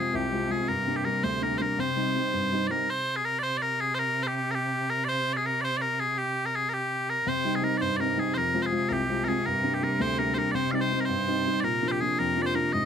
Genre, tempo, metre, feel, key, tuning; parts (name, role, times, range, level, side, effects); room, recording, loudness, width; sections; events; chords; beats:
celtic folk; 110 BPM (dotted quarters); 6/8; straight; C minor; A4 = 440 Hz
loud bright bagpipes; melody; 0.0-12.9 s; G4 to F5; -27 LUFS; equal
dark grand piano; accompaniment; 0.0-2.8, 7.3-12.9 s; C2 to F4; -28 LUFS; left 1 dB
clear cello; drone; 0.0-12.9 s; C3; -34 LUFS; right 2 dB
moderate small room ambience, RT60 0.5 s; -25 LUFS; side -8 dB against mid
0.0-2.9 A section; 2.9-11.6 A section; 11.6-12.9 B section
0.0 Fm; 0.7 Gm; 1.8 Cm; 2.9 N.C.; 7.3 Cm; 8.4 Fm; 9.5 Gm; 10.6 Cm; 11.6 Bb
0.14 | 0.69 1.24 | 1.78 2.33 | 2.88 3.43 | 3.98 4.52 | 5.07 5.62 | 6.17 6.71 | 7.26 7.81 | 8.36 8.91 | 9.45 10.00 | 10.55 11.10 | 11.65 12.20 | 12.74